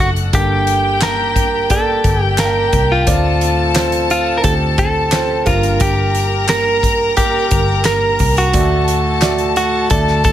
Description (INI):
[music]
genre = piano-driven pop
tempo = 88 BPM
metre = 4/4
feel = straight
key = G minor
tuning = A4 = 440 Hz
[part]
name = direct-recorded clean electric guitar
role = melody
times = 0.0-10.3 s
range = F4 to Bb4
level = -17 LUFS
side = equal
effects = plate reverb
[part]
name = rich chamber violin section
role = second line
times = 0.0-10.3 s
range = F#4 to Bb5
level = -20 LUFS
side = left 3 dB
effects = plate reverb
[part]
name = clear upright piano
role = accompaniment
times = 0.0-10.3 s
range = G2 to A5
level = -21 LUFS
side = right 4 dB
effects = plate reverb
[part]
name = vintage muted picked electric bass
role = bass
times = 0.0-10.3 s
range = F#1 to D2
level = -19 LUFS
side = equal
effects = none
[part]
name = loose indie drum kit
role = drums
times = 0.2-10.3 s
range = handclaps, hi-hat, kick drum, snare drum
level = -19 LUFS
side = equal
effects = none
[sound]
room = light reverb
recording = none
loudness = -12 LUFS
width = side -11 dB against mid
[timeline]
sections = 0.0-10.3 A section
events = none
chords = 0.3 Gmadd9; 3.1 Dm7; 5.5 Gm; 8.5 D